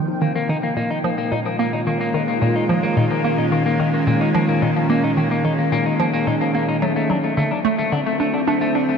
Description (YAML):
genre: ambient, sequencer-driven space music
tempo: 109 BPM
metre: 4/4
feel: straight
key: unclear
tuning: A4 = 440 Hz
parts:
  - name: evolving wavetable pad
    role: sustained chords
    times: 0.0-9.0 s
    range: Bb2 to G5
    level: -20 LUFS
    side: equal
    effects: chorus, built-in reverb
  - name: hollow square pluck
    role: riff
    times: 0.0-9.0 s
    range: Bb2 to D4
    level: -22 LUFS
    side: equal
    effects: chorus, phaser, ping-pong delay
  - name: semi-hollow electric guitar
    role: arpeggios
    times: 0.2-9.0 s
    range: A3 to Eb4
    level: -23 LUFS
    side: left 2 dB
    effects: auto-pan, ping-pong delay
room: wet huge ambient reverb, RT60 7.4 s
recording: in a vast, echoing space, cassette tape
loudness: -17 LUFS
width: side -6 dB against mid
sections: 0.0-9.0 A section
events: none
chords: 0.2 Bbm; 6.8 D7